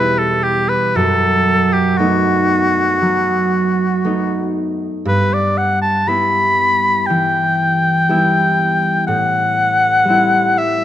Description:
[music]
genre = classical, romantic duo for oboe and harp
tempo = 59 BPM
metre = 4/4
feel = rubato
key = E minor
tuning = A4 = 440 Hz
[part]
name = clear oboe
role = melody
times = 0.0-10.8 s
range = F#4 to B5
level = -15 LUFS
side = left 1 dB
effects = none
[part]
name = concert harp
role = accompaniment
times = 0.0-10.8 s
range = E2 to E4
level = -17 LUFS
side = right 1 dB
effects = none
[sound]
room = moderate recital hall reverb, RT60 1.5 s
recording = close, detailed microphones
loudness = -13 LUFS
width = side -12 dB against mid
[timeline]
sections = 0.0-10.8 A section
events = none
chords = 0.0 Em; 0.9 B7/F#; 5.1 Em/G; 9.1 Am7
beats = | 0.94 1.97 3.01 4.04 | 5.06 6.07 7.08 8.08 | 9.07 10.07

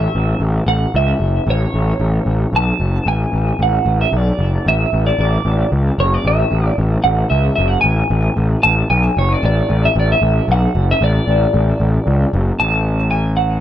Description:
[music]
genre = post-rock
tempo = 113 BPM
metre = 3/4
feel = straight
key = unclear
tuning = A4 = 435 Hz
[part]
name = twelve-string electric guitar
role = melody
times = 0.0-13.6 s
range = C#5 to A5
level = -18 LUFS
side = right 1 dB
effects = wide subtle chorus, tape echo
[part]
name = fuzz picked electric bass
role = bass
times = 0.0-13.6 s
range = F#1 to C#2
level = -15 LUFS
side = equal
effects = overdrive
[sound]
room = little or no reverb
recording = dark, warm production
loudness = -13 LUFS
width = side -11 dB against mid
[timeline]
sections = 0.0-12.6 A section; 12.6-13.6 B section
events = none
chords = 0.0 A; 1.5 N.C.; 4.7 D5/A; 7.8 N.C.; 11.0 D5/A; 12.6 A5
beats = 0.42 0.95 | 1.48 2.01 2.54 | 3.07 3.60 4.13 | 4.66 5.19 5.72 | 6.25 6.78 7.31 | 7.84 8.36 8.89 | 9.42 9.95 10.48 | 11.00 11.53 12.06 | 12.59 13.12

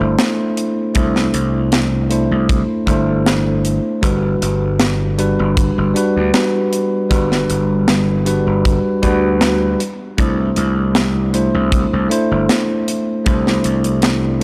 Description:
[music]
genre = vaporwave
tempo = 78 BPM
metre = 4/4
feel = swing 54% on 16ths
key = unclear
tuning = A4 = 444 Hz
[part]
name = bell-like tine electric piano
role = accompaniment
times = 0.0-14.4 s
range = G3 to C5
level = -20 LUFS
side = equal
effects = subtle chorus, analog delay
[part]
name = gritty slap bass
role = bass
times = 0.0-14.4 s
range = G1 to D2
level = -20 LUFS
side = equal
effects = overdrive
[part]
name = tight metal drum kit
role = drums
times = 0.2-14.2 s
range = hi-hat, snare drum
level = -22 LUFS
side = equal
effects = none
[part]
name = kick drum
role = drums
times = 1.0-13.4 s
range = none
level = -21 LUFS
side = equal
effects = none
[sound]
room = light reverb, small room ambience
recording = dry, gritty hardware recording, transformer saturation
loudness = -16 LUFS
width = mono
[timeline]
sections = 0.0-14.4 A section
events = none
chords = 0.0 C69; 4.0 Gmaj7; 9.8 C69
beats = 0.18 | 0.95 1.72 2.49 3.26 | 4.03 4.80 5.57 6.34 | 7.11 7.88 8.65 9.41 | 10.18 10.95 11.72 12.49 | 13.26 14.03

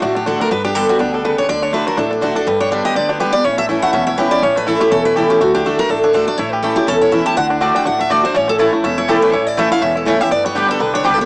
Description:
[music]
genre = bluegrass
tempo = 245 BPM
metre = 4/4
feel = swing 56% on 8ths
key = D major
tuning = A4 = 444 Hz
[part]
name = bluegrass banjo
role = melody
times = 0.0-11.3 s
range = G3 to G4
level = -23 LUFS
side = equal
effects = cassette tape
[part]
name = picked steel-string acoustic guitar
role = melody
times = 0.0-11.3 s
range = D4 to A5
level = -18 LUFS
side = equal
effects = cassette tape
[part]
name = picked steel-string acoustic guitar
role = accompaniment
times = 0.0-11.3 s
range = E2 to G4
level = -22 LUFS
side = equal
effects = none
[part]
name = upright bass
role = bass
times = 0.0-11.3 s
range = E1 to D2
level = -33 LUFS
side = equal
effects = none
[part]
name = mandolin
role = stabs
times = 7.6-11.2 s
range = A3 to A5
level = -22 LUFS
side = equal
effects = none
[sound]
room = moderate lush hall reverb, RT60 2.3 s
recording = home recording on cassette, small speaker sound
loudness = -16 LUFS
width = mono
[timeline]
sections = 0.0-11.3 A section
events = none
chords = 0.0 D; 0.5 G; 1.5 D; 2.5 G; 3.4 A; 5.4 D; 6.4 A; 7.4 D; 8.4 A; 10.3 G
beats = 0.02 0.26 | 0.51 0.75 1.00 1.24 | 1.49 1.73 1.98 2.22 | 2.47 2.71 2.96 3.20 | 3.45 3.69 3.94 4.18 | 4.43 4.67 4.92 5.16 | 5.41 5.65 5.90 6.14 | 6.39 6.63 6.88 7.12 | 7.37 7.62 7.86 8.11 | 8.35 8.60 8.84 9.09 | 9.33 9.58 9.82 10.07 | 10.31 10.56 10.80 11.05

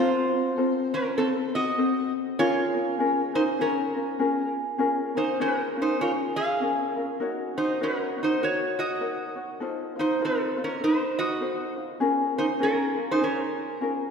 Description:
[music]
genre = Hawaiian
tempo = 100 BPM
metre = 4/4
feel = swing 59% on 8ths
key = Bb minor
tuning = A4 = 439 Hz
[part]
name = metal-body resonator slide guitar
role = melody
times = 0.0-13.8 s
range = C4 to F5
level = -26 LUFS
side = right 2 dB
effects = none
[part]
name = ukulele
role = accompaniment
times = 0.0-14.1 s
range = C4 to Db5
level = -27 LUFS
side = left 2 dB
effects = none
[sound]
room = wet concert hall reverb, RT60 2.4 s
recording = heard from further back in the room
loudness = -24 LUFS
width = side -6 dB against mid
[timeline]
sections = 0.0-4.8 A section; 4.8-14.1 B section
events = none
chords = 0.0 F; 2.4 Bbm7; 7.2 Ebm7; 9.6 F7; 12.0 Bbm7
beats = 0.57 1.17 1.78 | 2.38 2.98 3.59 4.19 | 4.79 5.39 6.00 6.60 | 7.20 7.80 8.40 9.01 | 9.61 10.21 10.81 11.41 | 12.01 12.61 13.21 13.81

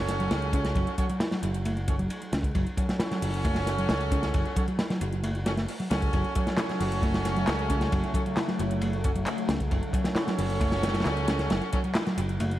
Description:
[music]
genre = breakbeat, breaks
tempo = 134 BPM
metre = 4/4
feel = straight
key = F# minor pentatonic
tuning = A4 = 445 Hz
[part]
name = bright horn section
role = stabs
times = 0.0-11.8 s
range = C#4 to C#5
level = -32 LUFS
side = right 1 dB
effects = vintage 12-bit sampler grit, tape echo
[part]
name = overdriven picked electric bass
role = bass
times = 0.0-12.6 s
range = F#1 to C#2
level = -30 LUFS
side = equal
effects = none
[part]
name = crunchy breakbeat drum kit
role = drums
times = 0.1-12.5 s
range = hi-hat, kick drum, ride cymbal, snare drum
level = -29 LUFS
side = equal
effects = tape echo
[part]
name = garage drum kit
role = drums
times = 0.1-12.6 s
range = handclaps, hi-hat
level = -39 LUFS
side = equal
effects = tape echo
[part]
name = vintage muted picked electric bass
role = riff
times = 0.2-12.5 s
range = F#3 to E4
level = -32 LUFS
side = equal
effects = tape echo
[part]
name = phased analog pad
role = sustained chords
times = 6.7-12.6 s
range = C#3 to A3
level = -36 LUFS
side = left 1 dB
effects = phaser, chorus, sidechain pumping
[sound]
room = light reverb, studio reverb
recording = echo-heavy mix, vinyl crackle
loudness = -25 LUFS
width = side -14 dB against mid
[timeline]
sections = 0.0-12.6 A section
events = none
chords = 0.0 F#m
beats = 0.31 | 0.76 1.21 1.65 2.10 | 2.55 3.00 3.45 3.89 | 4.34 4.79 5.24 5.68 | 6.13 6.58 7.03 7.47 | 7.92 8.37 8.82 9.27 | 9.71 10.16 10.61 11.06 | 11.51 11.95 12.40

